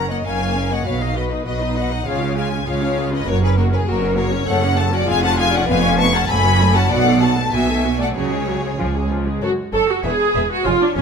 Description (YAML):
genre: quick classical-period movement for string orchestra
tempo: 99 BPM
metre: 2/4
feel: straight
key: F# major, F# minor from 4.5 s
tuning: A4 = 440 Hz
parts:
  - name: rich symphonic violin section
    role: melody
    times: 0.0-11.0 s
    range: A#4 to C#6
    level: -23 LUFS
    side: left 5 dB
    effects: none
  - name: rich chamber violin section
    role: second line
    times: 0.0-11.0 s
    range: F#4 to A5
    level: -25 LUFS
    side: left 4 dB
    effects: none
  - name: clear symphonic viola section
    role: accompaniment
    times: 0.0-11.0 s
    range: E#3 to D#5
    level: -21 LUFS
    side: equal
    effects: none
  - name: bright symphonic double bass section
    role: bass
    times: 0.0-11.0 s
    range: E1 to C#2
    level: -21 LUFS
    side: right 3 dB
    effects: none
  - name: clear symphonic cello section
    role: bass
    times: 0.0-11.0 s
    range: E2 to E#3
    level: -23 LUFS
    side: right 2 dB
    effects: none
room: moderate scoring stage reverb, RT60 1.4 s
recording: none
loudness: -16 LUFS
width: side -6 dB against mid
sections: 0.0-9.4 A section; 9.4-11.0 B section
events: none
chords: 0.0 F#; 0.9 B; 2.1 C#; 3.3 F#; 4.5 F#m; 5.1 C#/E#; 5.7 C#7/E#; 6.3 F#m; 6.9 B5; 8.2 C#sus4; 8.8 C#; 9.4 F#m; 10.0 E